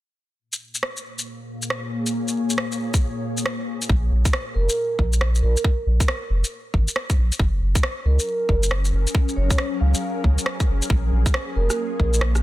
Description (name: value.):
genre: future garage.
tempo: 137 BPM.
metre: 4/4.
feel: swing 64% on 16ths.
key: Bb minor.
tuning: A4 = 440 Hz.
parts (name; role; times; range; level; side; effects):
ethereal airy pad; sustained chords; 1.2-3.9, 8.2-12.4 s; Bb2 to Db5; -28 LUFS; left 2 dB; ensemble chorus, built-in reverb, sidechain pumping.
electronic shaker and rim click; drums; 0.5-12.4 s; none; -26 LUFS; equal; overdrive.
electronic kick drum; drums; 2.9-12.1 s; none; -20 LUFS; equal; overdrive.
soft dub sub bass; bass; 3.9-12.4 s; F1 to Db2; -19 LUFS; equal; none.
vibraphone with soft mallets; melody; 4.5-12.2 s; Bb4 to F5; -28 LUFS; right 2 dB; tape echo.
room: digital ambience.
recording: dense, heavily limited modern master.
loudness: -20 LUFS.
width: side -16 dB against mid.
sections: 0.4-3.9 A section; 3.9-12.4 B section.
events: filter sweep on ambient pad 0.4-3.9; break 3.5-3.9.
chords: 0.4 Bbm7; 3.9 Bb5; 7.4 Gbadd9; 10.9 Bbm7.